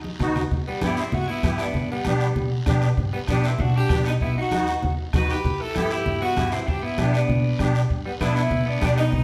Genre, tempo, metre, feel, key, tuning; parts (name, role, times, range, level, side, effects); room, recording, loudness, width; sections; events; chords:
latin, cumbia; 195 BPM; 4/4; straight; A4 = 439 Hz
warm saxophone section; melody; 0.0-9.2 s; B3 to B4; -30 LUFS; equal
upright bass; bass; 0.0-9.2 s; B1 to B2; -27 LUFS; equal
congas; percussion; 0.0-9.2 s; -31 LUFS; equal
musette accordion; accompaniment; 0.2-9.0 s; B3 to G4; -31 LUFS; equal
bombo; percussion; 0.2-9.2 s; -32 LUFS; equal
guiro; percussion; 0.2-9.2 s; -42 LUFS; equal
semi-hollow electric guitar; second line; 0.7-9.2 s; G3 to G4; -33 LUFS; equal
wet large studio reverb, RT60 1.2 s; band playing live in one room; -23 LUFS; mono
0.5-9.2 A section
drum fill 0.1-0.5
0.0 B; 0.5 Em; 1.7 G; 4.2 B; 5.4 Em; 6.7 G